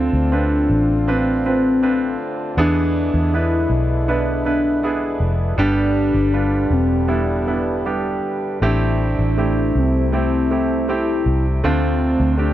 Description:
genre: pop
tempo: 80 BPM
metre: 4/4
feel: straight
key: A minor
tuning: A4 = 439 Hz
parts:
  - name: warm velvety synth lead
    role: melody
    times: 0.0-12.5 s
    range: B3 to E4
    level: -20 LUFS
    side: left 1 dB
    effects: chorus
  - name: clear concert grand piano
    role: accompaniment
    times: 0.0-12.5 s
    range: G2 to B4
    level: -23 LUFS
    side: right 3 dB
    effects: none
  - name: mellow French horn section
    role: sustained chords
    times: 0.0-12.5 s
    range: C3 to B4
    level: -27 LUFS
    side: left 1 dB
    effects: none
  - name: vintage muted fingered electric bass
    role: bass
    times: 0.0-12.5 s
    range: E1 to E2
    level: -20 LUFS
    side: equal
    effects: none
room: little or no reverb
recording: dry, close 1970s-style studio recording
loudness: -16 LUFS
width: side -13 dB against mid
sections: 0.0-12.5 A section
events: none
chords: 0.0 Dm7; 2.6 E7; 5.6 G; 8.6 Am7; 11.6 Dm7

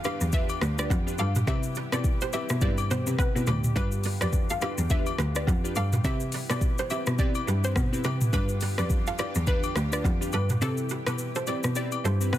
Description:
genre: afrobeats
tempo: 105 BPM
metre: 4/4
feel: swing 58% on 16ths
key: G mixolydian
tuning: A4 = 440 Hz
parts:
  - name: hollow square pluck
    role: melody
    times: 0.0-12.4 s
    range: A4 to F5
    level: -35 LUFS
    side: right 1 dB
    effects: chorus, ping-pong delay
  - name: glassy digital keys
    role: accompaniment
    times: 0.0-12.3 s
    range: C4 to B4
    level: -35 LUFS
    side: left 2 dB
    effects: chorus
  - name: lush unison pad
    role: sustained chords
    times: 0.0-12.4 s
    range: D3 to G4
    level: -39 LUFS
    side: right 1 dB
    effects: chorus
  - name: clear cello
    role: bass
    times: 0.0-12.4 s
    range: D2 to C3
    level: -28 LUFS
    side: equal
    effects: none
  - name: afro-pop drum kit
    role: drums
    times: 0.0-12.4 s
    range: hi-hat, kick drum, rim click, shaker, toms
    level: -28 LUFS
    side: equal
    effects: soft clipping on snare
  - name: agogo bells and woodblock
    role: percussion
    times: 0.0-12.4 s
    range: none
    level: -38 LUFS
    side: left 10 dB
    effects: none
  - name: kora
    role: riff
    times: 0.1-12.2 s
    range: E4 to D5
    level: -38 LUFS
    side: right 6 dB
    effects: ping-pong delay
room: little or no reverb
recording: dense, heavily limited modern master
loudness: -24 LUFS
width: side -13 dB against mid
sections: 0.0-12.4 A section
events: kick muted 10.6-12.4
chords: 0.0 G7; 1.5 Cmaj7; 3.8 G7; 6.0 Cmaj7; 8.3 G7; 10.6 Cmaj7

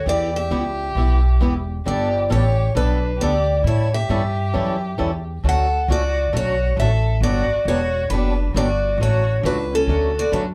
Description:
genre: acoustic string swing (jazz manouche)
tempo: 134 BPM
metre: 4/4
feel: swing 63% on 8ths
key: D major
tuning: A4 = 440 Hz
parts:
  - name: picked steel-string acoustic guitar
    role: melody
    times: 0.0-10.4 s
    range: A4 to F#5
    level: -25 LUFS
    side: equal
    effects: none
  - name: warm violin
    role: second line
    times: 0.0-10.5 s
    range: C#4 to A4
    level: -31 LUFS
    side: equal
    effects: none
  - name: upright bass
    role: bass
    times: 0.0-10.5 s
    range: E1 to A2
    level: -23 LUFS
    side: equal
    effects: none
  - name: picked swing-style acoustic guitar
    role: accompaniment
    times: 0.1-10.4 s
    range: D3 to A4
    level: -28 LUFS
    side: equal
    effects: none
room: wet club reverb, RT60 0.5 s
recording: heard from further back in the room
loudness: -20 LUFS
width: mono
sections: 0.0-10.5 A section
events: none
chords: 0.1 Em; 1.9 Gadd9; 3.6 A7; 5.4 Dmaj7; 7.2 Gmaj7; 9.0 Dmaj7

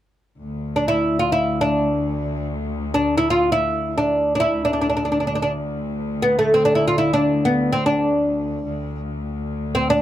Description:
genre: Turkish makam ensemble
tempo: free time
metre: none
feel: none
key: D makam nikriz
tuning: A4 = 439 Hz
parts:
  - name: rich studio cello section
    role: drone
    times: 0.4-10.0 s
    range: D2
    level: -26 LUFS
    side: left 1 dB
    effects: none
  - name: oud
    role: melody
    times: 0.8-10.0 s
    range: A3 to F4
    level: -18 LUFS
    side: equal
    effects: none
room: light reverb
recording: close, detailed microphones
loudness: -18 LUFS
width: side -12 dB against mid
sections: 0.4-10.0 A section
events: none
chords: none

